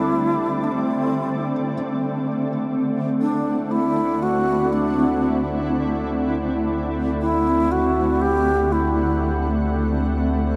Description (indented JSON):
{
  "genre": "ambient",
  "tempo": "free time",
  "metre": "none",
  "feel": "none",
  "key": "D mixolydian",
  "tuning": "A4 = 440 Hz",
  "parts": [
    { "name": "breathy bright wooden-headed alto flute", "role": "melody", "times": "0.0-9.5 s", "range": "C4 to G4", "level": "-25 LUFS", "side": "equal", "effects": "tape echo" },
    { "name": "shimmering ambient pad", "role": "sustained chords", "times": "0.0-10.6 s", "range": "D3 to F#5", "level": "-24 LUFS", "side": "equal", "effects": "chorus, built-in reverb" },
    { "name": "felt-muted upright piano", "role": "arpeggios", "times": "0.0-1.7 s", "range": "G3", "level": "-44 LUFS", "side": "equal", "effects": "none" },
    { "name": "deep rumbling drone", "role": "bass", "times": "0.0-10.6 s", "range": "D2", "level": "-30 LUFS", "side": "equal", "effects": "built-in reverb" }
  ],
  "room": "wet huge ambient reverb, RT60 7.9 s",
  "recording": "dark, warm production",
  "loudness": "-21 LUFS",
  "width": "mono",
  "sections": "0.0-1.7 A section; 1.7-10.6 A section",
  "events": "fade-in on synth drone 1.7-10.6",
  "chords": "0.0 Am7/D; 1.7 D9"
}